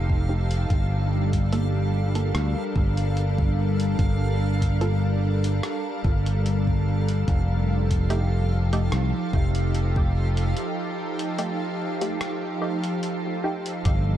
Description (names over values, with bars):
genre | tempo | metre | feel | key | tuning
ambient dub | 73 BPM | 4/4 | straight | unclear | A4 = 441 Hz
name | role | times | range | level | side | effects
soft additive organ-like pad | sustained chords | 0.0-14.2 s | F3 to F5 | -28 LUFS | equal | ensemble chorus, built-in reverb
fingered electric bass | bass | 0.0-14.2 s | F1 to D2 | -22 LUFS | equal | tube saturation
backwards swelling texture | texture | 0.0-14.2 s | F5 | -39 LUFS | equal | built-in reverb
electronic kick drum | drums | 0.1-14.0 s | none | -25 LUFS | equal | none
filtered dub chord stab | stabs | 0.3-13.6 s | A3 to A4 | -33 LUFS | right 2 dB | chorus, phaser, dub echo
lo-fi sampler-style drum kit | drums | 0.5-14.0 s | hi-hat, rim click | -35 LUFS | equal | none
room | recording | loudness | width
light reverb, digital ambience | dark, warm production | -22 LUFS | side -12 dB against mid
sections
0.0-13.9 A section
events
break 10.6-13.9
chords
0.0 F7; 0.7 Gm7; 7.3 F7